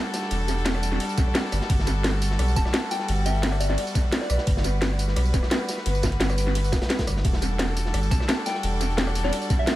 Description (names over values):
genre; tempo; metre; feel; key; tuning
liquid drum and bass; 173 BPM; 4/4; straight; G major; A4 = 440 Hz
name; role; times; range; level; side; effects
rich chamber string section; sustained chords; 0.0-9.8 s; G3 to B4; -30 LUFS; left 1 dB; none
crunchy breakbeat drum kit; drums; 0.1-9.8 s; hi-hat, snare drum; -32 LUFS; equal; high-pass filter on hats, high-pass filter on snare, high-pass filter on room, analog delay
drum and bass drum kit; drums; 0.1-9.7 s; hi-hat, ride cymbal, rim click, snare drum, tambourine; -28 LUFS; equal; analog delay
warm sub bass; bass; 0.3-9.3 s; D1 to B1; -25 LUFS; equal; none
electronic kick drum; drums; 1.2-9.6 s; none; -24 LUFS; equal; none
soft synth bell; melody; 2.6-4.5, 8.1-9.8 s; D5 to A5; -32 LUFS; left 1 dB; chorus, phaser, dub echo
room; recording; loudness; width
light reverb, studio reverb; echo-heavy mix; -21 LUFS; side -15 dB against mid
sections
0.0-9.8 A section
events
none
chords
0.0 Em11; 1.5 Gmaj9; 7.2 Em11